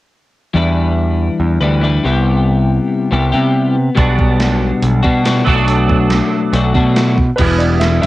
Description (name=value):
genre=indie rock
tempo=140 BPM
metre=4/4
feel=straight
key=E minor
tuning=A4 = 444 Hz
part: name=twelve-string electric guitar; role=riff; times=0.5-8.1 s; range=E2 to B4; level=-16 LUFS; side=left 3 dB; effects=lush chorus, cassette tape
part: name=growling picked electric bass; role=bass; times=0.5-8.1 s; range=E1 to C3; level=-14 LUFS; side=right 1 dB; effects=overdrive
part: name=overdriven electric guitar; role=riff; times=4.0-8.1 s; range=F#3 to F#4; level=-20 LUFS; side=right 6 dB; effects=ensemble chorus, cassette tape, tape echo
part: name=gated 80s digital drum machine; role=drums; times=4.0-8.1 s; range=crash cymbal, hi-hat, kick drum, snare drum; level=-17 LUFS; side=right 1 dB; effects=gated reverb, gated reverb snare, cassette tape
part: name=warm upright piano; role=melody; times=7.4-8.1 s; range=B4 to E5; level=-18 LUFS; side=right 1 dB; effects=cassette tape
room=little or no reverb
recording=home recording on cassette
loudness=-11 LUFS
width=side -17 dB against mid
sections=0.6-7.4 A section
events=none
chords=0.6 Em7; 2.1 Cmaj7; 4.0 Gmaj7/B; 5.5 Bm7; 7.4 Em